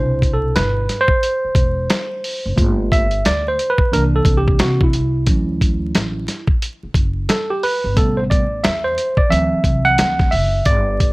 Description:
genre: hip hop, jazz-hop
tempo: 89 BPM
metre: 4/4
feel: swing 62% on 16ths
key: unclear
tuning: A4 = 440 Hz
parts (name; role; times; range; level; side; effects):
- tine electric piano; accompaniment; 0.0-11.1 s; B2 to F#5; -18 LUFS; right 1 dB; none
- upright bass; bass; 0.0-11.1 s; E1 to C3; -20 LUFS; equal; none
- dusty soul sampler-style drum kit; drums; 0.2-11.1 s; hi-hat, kick drum, snare drum; -17 LUFS; equal; none
room: digital ambience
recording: vinyl crackle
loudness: -15 LUFS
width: side -23 dB against mid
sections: 0.0-11.1 A section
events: tine electric piano solo 0.0-11.1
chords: 0.0 Cmaj9; 2.6 Gm7; 3.9 C9; 5.3 Dmaj9; 8.0 Am7; 9.3 D9

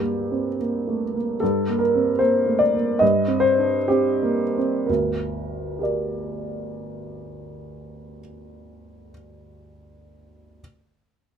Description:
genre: classical, romantic character piece for solo piano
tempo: 56-76 BPM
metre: 2/4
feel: rubato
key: G minor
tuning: A4 = 445 Hz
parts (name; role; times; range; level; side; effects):
- warm baby grand piano; solo; 0.0-10.6 s; G1 to Eb5; -20 LUFS; right 1 dB; none
room: light reverb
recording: minimal, uncompressed stereo recording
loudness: -19 LUFS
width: side -7 dB against mid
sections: 0.0-1.4 A section; 1.4-4.9 B section; 4.9-8.4 C section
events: slowing down 0.6-4.9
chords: 0.0 Gm; 3.0 C5/G; 4.9 Gm

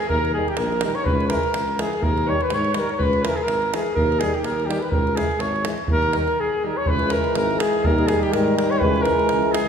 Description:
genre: balkan folk, Balkan brass band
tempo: 124 BPM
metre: 2/4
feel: swing 56% on 16ths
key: unclear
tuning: A4 = 444 Hz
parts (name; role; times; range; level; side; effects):
- warm flugelhorn; melody; 0.0-9.7 s; G4 to Db5; -23 LUFS; right 1 dB; none
- warm alto saxophone; second line; 0.0-9.7 s; G4 to Db5; -28 LUFS; left 4 dB; none
- davul; percussion; 0.0-9.7 s; none; -26 LUFS; right 1 dB; none
- mellow tuba; bass; 0.1-9.6 s; Ab1 to Ab2; -26 LUFS; equal; none
- mellow French horn; accompaniment; 0.3-9.7 s; G3 to Ab3; -29 LUFS; left 4 dB; none
- warm euphonium; accompaniment; 0.4-9.7 s; Eb3 to Fb3; -29 LUFS; right 4 dB; none
room: wet scoring stage reverb, RT60 1.9 s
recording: recorded in a church or concert hall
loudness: -18 LUFS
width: side -7 dB against mid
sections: 0.0-6.9 A section; 6.9-9.7 A section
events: break 6.4-6.9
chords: 0.1 Eb; 1.1 Dbm; 2.0 Eb; 3.0 Dbm; 4.0 Eb; 4.9 Dbm; 5.9 Eb; 6.9 Dbm; 7.8 Eb; 8.8 Dbm

